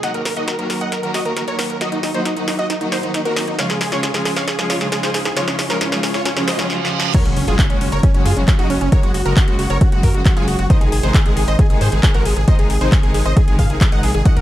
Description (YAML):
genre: uplifting trance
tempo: 135 BPM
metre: 4/4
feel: straight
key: Gb lydian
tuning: A4 = 440 Hz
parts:
  - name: big supersaw lead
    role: melody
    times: 0.0-14.4 s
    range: Db4 to Gb5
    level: -23 LUFS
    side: right 1 dB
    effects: sidechain pumping, low-pass filter, digital delay
  - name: wide unison pluck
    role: second line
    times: 0.0-14.4 s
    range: Db4 to Gb5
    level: -26 LUFS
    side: equal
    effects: sidechain pumping, digital delay
  - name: clear symphonic string section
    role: sustained chords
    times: 0.0-14.4 s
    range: C3 to Gb4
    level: -24 LUFS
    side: equal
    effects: sidechain pumping
  - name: big-room dance drum kit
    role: drums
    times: 0.0-14.4 s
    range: crash cymbal, handclaps, hi-hat, snare drum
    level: -23 LUFS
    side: equal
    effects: high-pass filter on snare, high-pass filter on hats, high-pass filter on cymbals
  - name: riser, reverse cymbal and impact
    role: sound effects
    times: 2.8-8.9 s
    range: none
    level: -28 LUFS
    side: right 1 dB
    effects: none
  - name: gritty driven synth bass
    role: bass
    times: 0.1-14.4 s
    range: Eb1 to Ab2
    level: -22 LUFS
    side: equal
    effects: sidechain pumping, high-pass filter
  - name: electronic kick drum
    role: drums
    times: 7.1-14.3 s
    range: none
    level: -14 LUFS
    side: equal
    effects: none
room: light reverb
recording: dark, warm production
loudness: -14 LUFS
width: side -14 dB against mid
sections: 0.0-7.1 A section; 7.1-14.4 B section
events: build-up 0.0-7.1; drum fill 0.0-6.7, 6.7-7.1; riser 2.8-6.7; reverse cymbal 6.3-7.1; drop 7.1-14.4; impact 7.1-8.9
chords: 0.0 Ebm; 3.6 Db; 7.1 Gbsus2; 10.7 Ab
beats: | 0.03 0.48 0.92 1.37 | 1.81 2.26 2.70 3.15 | 3.59 4.03 4.48 4.92 | 5.37 5.81 6.26 6.70 | 7.14 7.59 8.03 8.48 | 8.92 9.37 9.81 10.26 | 10.70 11.14 11.59 12.03 | 12.48 12.92 13.37 13.81 | 14.26